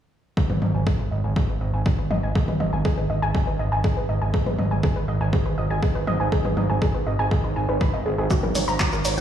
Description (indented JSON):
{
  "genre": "melodic techno",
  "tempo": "121 BPM",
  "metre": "4/4",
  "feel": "straight",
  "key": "G# minor",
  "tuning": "A4 = 440 Hz",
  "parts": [
    { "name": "warbly dusty pluck", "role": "arpeggios", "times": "0.4-9.2 s", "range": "F#4 to B5", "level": "-27 LUFS", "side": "equal", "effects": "chorus, sidechain pumping, digital delay" },
    { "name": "electronic kick drum", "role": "drums", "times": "0.4-8.9 s", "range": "none", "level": "-23 LUFS", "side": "equal", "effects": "none" },
    { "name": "fat analog bass", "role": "bass", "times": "0.5-9.2 s", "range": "G#1", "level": "-24 LUFS", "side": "right 1 dB", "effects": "sidechain pumping" },
    { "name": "punchy analog drum machine", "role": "drums", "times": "0.5-9.2 s", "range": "handclaps, hi-hat, shaker, toms", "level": "-27 LUFS", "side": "equal", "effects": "none" }
  ],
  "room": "light reverb",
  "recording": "played on a big sound system in a bare room, stone room reverb, studio reverb",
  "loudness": "-20 LUFS",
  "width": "side -10 dB against mid",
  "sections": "0.4-9.2 A section",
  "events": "none",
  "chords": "none"
}